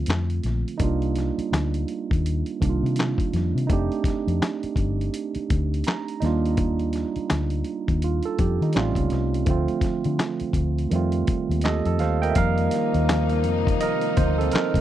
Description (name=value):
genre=R&B, neo-soul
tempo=83 BPM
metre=4/4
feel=swing 60% on 16ths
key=unclear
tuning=A4 = 440 Hz
part: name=barky tine electric piano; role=accompaniment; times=0.0-14.8 s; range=D3 to Bb5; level=-26 LUFS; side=right 7 dB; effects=overdrive
part: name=vintage muted fingered electric bass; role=bass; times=0.0-14.8 s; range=F1 to Eb3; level=-24 LUFS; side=left 1 dB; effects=none
part: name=dusty soul sampler-style drum kit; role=drums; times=0.1-14.8 s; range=handclaps, hi-hat, kick drum, snare drum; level=-26 LUFS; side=left 1 dB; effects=none
part: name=bright studio string section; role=sustained chords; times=12.3-14.8 s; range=C3 to Eb4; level=-32 LUFS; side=left 7 dB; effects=none
part: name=clear trombone section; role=stabs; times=12.4-14.8 s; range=F3 to Eb4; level=-28 LUFS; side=left 21 dB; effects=none
room=little or no reverb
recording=dry, close 1970s-style studio recording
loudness=-21 LUFS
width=side -12 dB against mid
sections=0.0-12.4 A section; 12.4-14.8 B section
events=tine electric piano fill 5.5-6.6; tine electric piano solo 12.4-14.8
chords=0.0 Dm7; 0.8 Cm11; 3.7 F13; 6.2 Ebmaj9; 8.7 A7alt; 9.5 Dm7; 10.9 F7; 12.4 F7sus4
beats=0.07 | 0.80 1.52 2.24 2.96 | 3.69 4.41 5.13 5.86 | 6.58 7.30 8.03 8.75 | 9.47 10.19 10.92 11.64 | 12.36 13.09 13.81 14.53